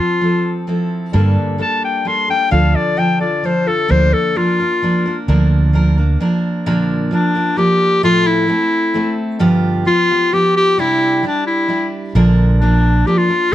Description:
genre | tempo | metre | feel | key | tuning
acoustic folk duo or small band | 131 BPM | 3/4 | straight | unclear | A4 = 440 Hz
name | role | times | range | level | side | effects
bright clarinet | melody | 0.0-13.5 s | D4 to C6 | -15 LUFS | left 2 dB | none
picked steel-string acoustic guitar | accompaniment | 0.0-13.5 s | G2 to Bb4 | -17 LUFS | right 1 dB | none
fingered electric bass | bass | 1.1-6.2, 12.2-13.0 s | Bb1 to G2 | -13 LUFS | right 1 dB | none
room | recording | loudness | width
little or no reverb | close, detailed microphones | -13 LUFS | side -13 dB against mid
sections
0.0-5.3 A section; 5.3-6.7 B section; 6.7-13.5 C section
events
clarinet solo 0.0-5.3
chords
0.0 Fmaj7; 1.1 Gmadd9; 2.5 Dm; 3.9 Bb/D; 6.7 Bb; 8.0 Fmaj7/A; 9.4 G7; 10.8 Cadd9; 12.2 Bb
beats
0.23 0.69 | 1.15 1.60 2.06 | 2.52 2.98 3.44 | 3.90 4.36 4.82 | 5.28 5.74 6.20 | 6.66 7.12 7.58 | 8.03 8.49 8.95 | 9.41 9.86 10.32 | 10.78 11.24 11.69 | 12.15 12.61 13.07 | 13.53

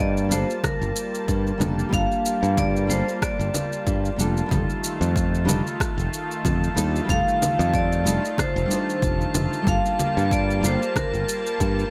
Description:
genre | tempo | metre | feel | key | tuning
sunset chillout | 93 BPM | 4/4 | swing 57% on 16ths | G minor | A4 = 439 Hz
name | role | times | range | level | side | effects
vibraphone with hard mallets | melody | 0.0-11.9 s | Bb4 to F5 | -29 LUFS | equal | digital delay
nylon-string guitar | accompaniment | 0.0-10.8 s | G3 to C5 | -31 LUFS | equal | digital delay
lush unison pad | sustained chords | 0.0-11.9 s | Eb3 to A5 | -33 LUFS | equal | chorus
modern bright fingered electric bass | bass | 0.0-11.8 s | F1 to G2 | -26 LUFS | equal | none
drifting glass-harmonics texture | texture | 0.8-11.9 s | A5 | -37 LUFS | equal | chorus, built-in reverb
electronic shaker, rim click and congas | drums | 0.2-11.9 s | none | -31 LUFS | equal | overdrive, studio ambience
electronic kick drum | drums | 0.6-11.7 s | none | -30 LUFS | equal | overdrive, studio ambience
room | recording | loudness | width
moderate plate reverb, RT60 2.1 s | bright 1980s-style digital production | -23 LUFS | mono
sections
0.0-11.9 A section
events
none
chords
0.0 Gm9; 4.5 F13; 9.7 Gm9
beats
0.64 1.28 | 1.93 2.57 3.22 3.86 | 4.51 5.15 5.80 6.44 | 7.09 7.73 8.38 9.02 | 9.67 10.31 10.96 11.60

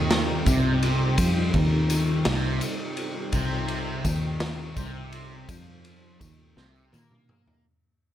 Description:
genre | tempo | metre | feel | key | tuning
psychedelic rock | 56 BPM (dotted quarters) | 6/8 | straight | C minor | A4 = 440 Hz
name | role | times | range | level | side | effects
string machine, cellos | sustained chords | 0.0-7.6 s | G3 to G4 | -32 LUFS | right 2 dB | phaser, ensemble chorus
fuzz guitar | riff | 0.0-7.6 s | C3 to Bb3 | -26 LUFS | left 1 dB | distortion, phaser
fingered electric bass | bass | 0.0-7.6 s | C2 to Bb2 | -29 LUFS | equal | none
vintage drum kit | drums | 0.1-7.6 s | kick drum, ride cymbal, snare drum, toms | -28 LUFS | equal | none
tambourine | percussion | 0.5-7.1 s | none | -40 LUFS | left 6 dB | none
room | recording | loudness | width
moderate plate reverb, RT60 1.6 s, small room ambience | dreamy mix soaked in reverb | -22 LUFS | side -11 dB against mid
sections
0.0-7.6 A section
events
fade-out 0.0-7.6; drum fill 6.6-7.6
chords
0.0 Cm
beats
0.10 | 1.18 2.26 | 3.33 4.41 | 5.49 6.57

